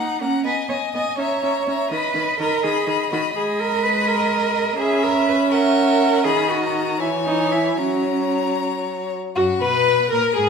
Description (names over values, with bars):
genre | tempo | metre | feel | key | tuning
quick classical-period movement for string quartet | 75-84 BPM (dotted quarters) | 6/8 | rubato | B major from 3.4 s | A4 = 441 Hz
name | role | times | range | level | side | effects
bright violin | melody | 0.0-10.5 s | F#4 to B5 | -26 LUFS | left 7 dB | none
rich violin | second line | 0.0-10.5 s | F#4 to F#5 | -24 LUFS | left 3 dB | none
rich viola | accompaniment | 0.0-10.5 s | D#3 to B4 | -23 LUFS | right 1 dB | none
rich cello | bass | 0.0-10.5 s | F#2 to D#5 | -22 LUFS | right 4 dB | none
room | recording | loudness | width
wet recital hall reverb, RT60 1.5 s | recorded in a church or concert hall | -18 LUFS | side -6 dB against mid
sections
0.0-9.4 A section; 9.4-10.5 B section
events
none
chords
0.5 B6; 1.2 A#dim/C#; 1.9 B/D#; 3.4 G#m; 4.8 C#m7; 5.5 F#7/C#; 6.2 B/D#; 7.0 C#m/E; 7.8 F#; 9.4 B5/F#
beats
| 0.45 1.18 | 1.91 2.63 | 3.35 4.07 | 4.79 5.51 | 6.24 7.00 | 7.78 8.57 | 9.36 10.11